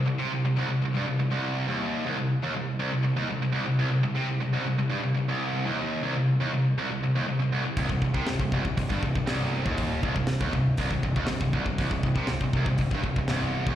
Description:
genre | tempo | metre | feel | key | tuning
heavy metal | 120 BPM | 4/4 | straight | C minor | A4 = 440 Hz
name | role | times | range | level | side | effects
heavy high-gain guitar | riff | 0.0-13.8 s | C2 to C3 | -29 LUFS | left 4 dB | distortion, slapback echo
tight distorted guitar | riff | 0.0-13.8 s | C2 to C3 | -28 LUFS | right 4 dB | distortion, slapback echo
overdriven picked electric bass | bass | 7.8-13.8 s | C1 to C2 | -30 LUFS | equal | none
tight metal drum kit | drums | 7.8-13.8 s | hi-hat, kick drum, snare drum | -30 LUFS | equal | none
room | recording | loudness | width
moderate club reverb, RT60 0.7 s | live gig heard through the venue's PA, recital hall reverb | -24 LUFS | side -11 dB against mid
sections
0.0-13.8 A section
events
none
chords
0.0 Cm

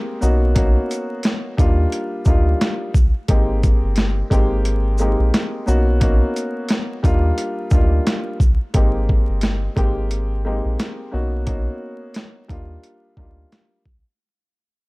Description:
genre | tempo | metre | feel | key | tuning
hip hop, boom-bap hip-hop | 88 BPM | 4/4 | swing 58% on 16ths | unclear | A4 = 440 Hz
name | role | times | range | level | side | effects
dark upright piano | accompaniment | 0.0-13.8 s | G3 to G4 | -24 LUFS | equal | high-pass filter, low-pass filter
round analog bass | bass | 0.2-14.0 s | G1 to Eb2 | -19 LUFS | equal | none
boom bap sampler-style drum kit | drums | 0.2-14.0 s | hi-hat, kick drum, shaker, snare drum | -18 LUFS | equal | overdrive
room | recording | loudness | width
little or no reverb | dark, warm production, vinyl crackle | -16 LUFS | side -24 dB against mid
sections
0.0-8.7 A section; 8.7-14.2 B section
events
fade-out 8.7-14.2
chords
0.2 Bmaj9; 1.6 Ebmaj9; 3.3 Abmaj9; 5.7 Bmaj9; 7.0 Ebmaj9; 8.7 Abmaj9; 11.1 Bmaj9; 12.5 Ebmaj9

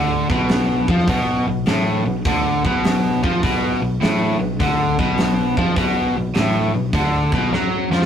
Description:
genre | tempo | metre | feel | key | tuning
blues rock power trio and southern rock | 102 BPM | 4/4 | swing 67% on 8ths | unclear | A4 = 440 Hz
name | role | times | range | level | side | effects
crunchy overdriven guitar | riff | 0.0-8.1 s | A2 to F#3 | -18 LUFS | equal | none
picked electric bass | bass | 0.0-8.1 s | A1 to F#2 | -25 LUFS | equal | none
big rock drum kit | drums | 0.3-8.1 s | hi-hat, kick drum, snare drum | -22 LUFS | equal | none
room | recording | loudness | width
moderate small room reverb, RT60 0.5 s | rough rehearsal-room recording, tube saturation | -16 LUFS | side -8 dB against mid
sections
0.0-8.1 A section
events
drum fill 7.5-8.1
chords
0.0 B5

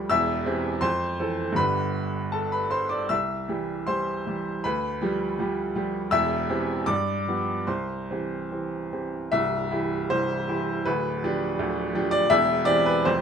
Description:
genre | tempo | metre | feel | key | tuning
classical, romantic character piece for solo piano | 70-83 BPM | 2/4 | rubato | C major | A4 = 442 Hz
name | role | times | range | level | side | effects
clear upright piano | solo | 0.0-13.2 s | C1 to E6 | -23 LUFS | equal | none
room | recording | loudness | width
light reverb | close, detailed microphones | -23 LUFS | side -7 dB against mid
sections
0.0-9.3 A section; 9.3-13.2 B section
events
none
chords
0.1 C/E; 0.8 Fmaj7; 1.6 G; 3.1 C; 4.6 G7/D; 6.1 C/E; 6.9 G7; 7.7 C; 10.9 G7/D; 12.3 C/E

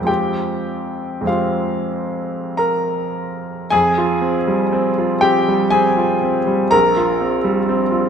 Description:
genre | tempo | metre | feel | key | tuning
classical, impressionist solo piano | 44-65 BPM | 3/4 | rubato | F minor | A4 = 440 Hz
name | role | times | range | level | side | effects
clear baby grand piano | solo | 0.0-8.1 s | Bb1 to Bb5 | -16 LUFS | equal | none
room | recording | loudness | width
moderate scoring stage reverb, RT60 1.7 s | none | -15 LUFS | side -7 dB against mid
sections
0.0-3.7 A section; 3.7-8.1 A section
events
none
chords
0.1 Fmadd9; 6.7 Bbsus2

